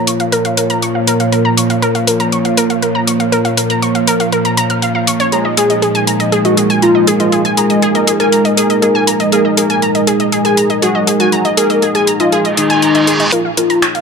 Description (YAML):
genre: melodic techno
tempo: 120 BPM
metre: 4/4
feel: straight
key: unclear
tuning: A4 = 437 Hz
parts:
  - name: dark analog pad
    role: sustained chords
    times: 0.0-14.0 s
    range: Ab3 to Db5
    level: -17 LUFS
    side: right 1 dB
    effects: chorus, phaser
  - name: wide unison pluck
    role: arpeggios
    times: 0.0-14.0 s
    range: Ab4 to F6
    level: -16 LUFS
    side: equal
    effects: cassette tape, ping-pong delay
  - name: bowed-like drone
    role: drone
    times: 0.0-13.4 s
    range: Bb2 to F3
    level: -20 LUFS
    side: right 1 dB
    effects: built-in reverb
  - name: house drum kit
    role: drums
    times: 0.1-14.0 s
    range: finger snaps, hi-hat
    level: -17 LUFS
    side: left 2 dB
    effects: high-pass filter on hats, high-pass filter on snare, high-pass filter on cymbals
  - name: fat analog lead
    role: melody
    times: 5.3-13.8 s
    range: Eb4 to Bb4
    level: -14 LUFS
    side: left 2 dB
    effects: ensemble chorus, ping-pong delay
  - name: reverse cymbal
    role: sound effects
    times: 12.5-13.3 s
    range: none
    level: -18 LUFS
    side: right 2 dB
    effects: none
room: light reverb, digital ambience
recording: dark, warm production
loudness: -10 LUFS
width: side -5 dB against mid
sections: 0.0-13.3 A section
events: filter sweep on synth pluck 0.0-13.3; reverse cymbal 12.5-13.3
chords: 0.0 Bbm; 5.3 Absus2; 13.3 Bbm